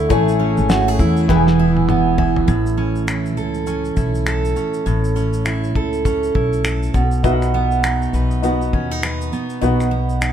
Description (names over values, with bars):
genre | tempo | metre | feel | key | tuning
acoustic pop | 101 BPM | 4/4 | swing 60% on 16ths | unclear | A4 = 440 Hz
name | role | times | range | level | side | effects
dark upright piano | accompaniment | 0.0-2.5, 7.2-10.3 s | D#4 to A5 | -23 LUFS | left 6 dB | none
picked steel-string acoustic guitar | accompaniment | 0.0-10.3 s | A2 to B4 | -19 LUFS | right 4 dB | none
pedal harmonium | sustained chords | 0.0-2.5 s | C#3 to G#5 | -26 LUFS | left 5 dB | none
upright bass | bass | 0.0-10.3 s | E1 to E2 | -20 LUFS | left 1 dB | none
cloth-damped thuddy drum kit | drums | 0.1-10.3 s | finger snaps, kick drum, shaker, snare drum, toms | -22 LUFS | left 1 dB | none
room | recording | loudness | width
light reverb | none | -15 LUFS | side -9 dB against mid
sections
0.0-2.5 A section; 2.5-10.3 B section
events
drum fill 1.3-2.5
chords
0.1 Amaj7; 1.3 E; 2.5 A; 6.9 B